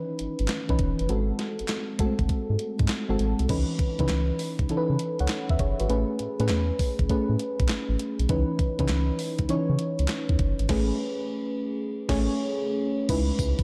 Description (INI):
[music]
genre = R&B, new jack swing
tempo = 100 BPM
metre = 4/4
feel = swing 67% on 16ths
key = C# minor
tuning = A4 = 440 Hz
[part]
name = mellow FM electric piano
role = accompaniment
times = 0.0-13.6 s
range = D#3 to F#5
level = -30 LUFS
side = equal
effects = chorus
[part]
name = round analog bass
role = bass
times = 0.2-13.5 s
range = E1 to C#3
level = -29 LUFS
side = equal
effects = none
[part]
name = crisp 8-bit digital drum machine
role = drums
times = 0.2-13.6 s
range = crash cymbal, handclaps, hi-hat, kick drum, snare drum, tambourine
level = -31 LUFS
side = equal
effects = none
[sound]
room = moderate echo chamber reverb, RT60 2.2 s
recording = dark, warm production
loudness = -26 LUFS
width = mono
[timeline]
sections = 0.0-3.5 A section; 3.5-13.1 B section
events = band accent 10.7-13.1; kick muted 11.9-13.1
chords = 0.0 C#m9; 1.1 G#7b9; 3.5 C#m9; 5.9 Amaj9; 8.3 C#m9; 10.7 Amaj9; 13.1 C#m9